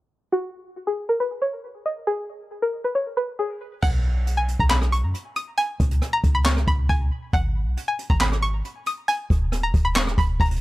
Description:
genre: hip hop, trap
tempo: 137 BPM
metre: 4/4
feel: half-time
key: unclear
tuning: A4 = 439 Hz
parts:
  - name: string-like resonator pluck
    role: melody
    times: 0.3-10.6 s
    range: Gb4 to Eb6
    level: -24 LUFS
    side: equal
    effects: chorus
  - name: clean 808-style bass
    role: bass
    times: 3.8-10.6 s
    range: Eb1 to F#2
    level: -22 LUFS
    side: equal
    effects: none
  - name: jazz brush drum kit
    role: drums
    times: 3.8-10.6 s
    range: crash cymbal, handclaps, hi-hat, kick drum, rim click, snare drum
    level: -24 LUFS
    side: equal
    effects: none
room: small room ambience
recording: low-pass filter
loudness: -21 LUFS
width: side -18 dB against mid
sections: 0.3-3.8 A section; 3.8-10.6 B section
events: filter sweep 0.3-3.8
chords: 0.3 N.C.; 3.8 Bsus2; 5.6 Db5; 7.3 N.C.; 9.1 Eb5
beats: | 0.33 0.76 1.20 1.64 | 2.08 2.51 2.95 3.39 | 3.83 4.27 4.70 5.14 | 5.58 6.02 6.46 6.89 | 7.33 7.77 8.21 8.65 | 9.08 9.52 9.96 10.40

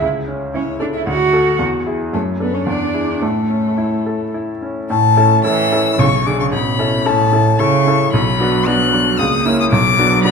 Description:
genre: quick classical-period movement for piano trio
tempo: 112 BPM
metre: 3/4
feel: rubato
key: A major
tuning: A4 = 439 Hz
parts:
  - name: warm cello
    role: second line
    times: 0.0-10.3 s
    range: A2 to F#4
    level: -18 LUFS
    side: right 4 dB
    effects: none
  - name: clear baby grand piano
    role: accompaniment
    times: 0.0-10.3 s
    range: A1 to A4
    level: -17 LUFS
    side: left 1 dB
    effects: none
  - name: rich violin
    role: melody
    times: 0.5-10.3 s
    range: A4 to F#6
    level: -18 LUFS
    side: left 8 dB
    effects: none
room: wet recital hall reverb, RT60 1.5 s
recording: minimal, uncompressed stereo recording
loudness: -13 LUFS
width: side -5 dB against mid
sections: 0.0-4.9 A section; 4.9-10.3 B section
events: none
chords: 0.0 A/C#; 1.1 D; 1.6 E; 2.1 D/F#; 2.7 E7; 3.2 A; 6.0 G#dim/B; 6.5 A; 8.1 Bm; 9.2 A#dim/C#; 9.7 Bm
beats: | 0.02 0.54 1.07 | 1.60 2.13 2.67 | 3.22 3.78 4.34 | 4.90 5.45 5.99 | 6.53 7.06 7.59 | 8.13 8.66 9.19 | 9.72 10.24

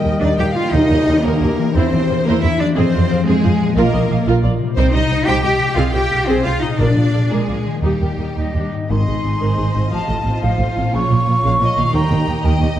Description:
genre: cinematic, heroic adventure film score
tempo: 119 BPM (dotted quarters)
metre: 6/8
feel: straight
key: Eb major, Ab major from 8.9 s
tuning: A4 = 440 Hz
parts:
  - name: rich symphonic violin section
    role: melody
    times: 0.0-12.8 s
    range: G4 to G5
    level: -27 LUFS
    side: left 2 dB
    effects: none
  - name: bright symphonic violin section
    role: second line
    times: 0.0-12.8 s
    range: F4 to G5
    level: -28 LUFS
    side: left 2 dB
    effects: none
  - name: clear clarinet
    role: second line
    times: 0.0-0.5 s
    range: Bb4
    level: -31 LUFS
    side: left 1 dB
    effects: none
  - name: dark cor anglais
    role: second line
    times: 0.0-0.6 s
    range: Eb5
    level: -28 LUFS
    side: right 1 dB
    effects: none
  - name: silver concert flute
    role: second line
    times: 0.0-0.6, 8.4-12.6 s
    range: Eb5 to Db6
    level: -22 LUFS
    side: equal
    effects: none
  - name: warm studio viola section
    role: accompaniment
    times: 0.0-12.8 s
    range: Db3 to G5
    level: -24 LUFS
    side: right 2 dB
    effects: none
  - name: mellow French horn section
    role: sustained chords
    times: 0.0-0.5 s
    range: G3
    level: -24 LUFS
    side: left 1 dB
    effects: none
  - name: concert harp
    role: arpeggios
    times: 0.0-12.8 s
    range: Ab2 to Bb5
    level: -23 LUFS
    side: left 7 dB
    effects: none
  - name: rich studio double bass section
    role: bass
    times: 0.0-12.8 s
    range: Ab1 to F2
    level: -19 LUFS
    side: right 2 dB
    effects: none
  - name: rich symphonic cello section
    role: bass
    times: 0.0-12.8 s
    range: Eb2 to G4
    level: -20 LUFS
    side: right 1 dB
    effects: none
  - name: timpani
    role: percussion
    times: 0.0-0.2, 6.8-9.4, 11.9-12.4 s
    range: Ab2 to Eb3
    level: -25 LUFS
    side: left 2 dB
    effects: none
  - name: tam-tam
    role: percussion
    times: 0.7-2.1 s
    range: none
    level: -26 LUFS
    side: left 2 dB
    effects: none
room: moderate scoring stage reverb, RT60 1.9 s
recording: dark, warm production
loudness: -14 LUFS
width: side -11 dB against mid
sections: 0.7-8.9 A section; 8.9-12.8 B section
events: band accent 0.7-1.1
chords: 0.0 Eb; 1.8 C7/E; 2.8 Fm; 3.8 Bbsus4; 4.3 Bb; 4.8 Cm; 5.8 Fm/C; 6.8 Bb7; 7.8 Eb; 8.9 Ab; 9.9 F7/A; 10.9 Bbm; 11.9 Eb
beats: 0.21 | 0.73 1.24 | 1.75 2.26 | 2.77 3.27 | 3.77 4.27 | 4.77 5.27 | 5.77 6.28 | 6.79 7.31 | 7.83 8.36 | 8.90 9.41 | 9.92 10.42 | 10.93 11.44 | 11.94 12.44

